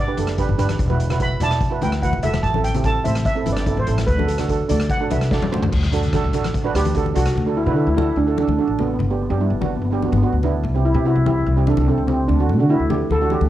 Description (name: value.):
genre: calypso.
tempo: 146 BPM.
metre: 4/4.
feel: straight.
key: unclear.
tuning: A4 = 440 Hz.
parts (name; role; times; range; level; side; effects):
steel pan; melody; 0.0-13.5 s; B3 to B5; -22 LUFS; equal; cassette tape.
steel pan; accompaniment; 0.1-13.4 s; A3 to D5; -24 LUFS; right 7 dB; none.
upright bass; bass; 0.2-13.5 s; E1 to D3; -20 LUFS; left 1 dB; none.
street-band drum kit; drums; 0.2-7.4 s; crash cymbal, hi-hat, kick drum, rim click, snare drum, toms; -24 LUFS; left 1 dB; cassette tape.
congas; percussion; 0.2-13.5 s; none; -28 LUFS; left 6 dB; none.
room: moderate booth ambience, RT60 0.2 s.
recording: home recording on cassette.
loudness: -17 LUFS.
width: side -13 dB against mid.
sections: 0.0-5.7 A section; 5.7-7.4 B section; 7.4-13.5 C section.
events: steel pan solo 0.0-5.7; drum fill 5.3-5.7.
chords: 0.0 Gmaj7; 0.8 Esus2; 2.4 Am7; 4.1 D; 9.0 G; 10.6 C; 12.3 Dadd9.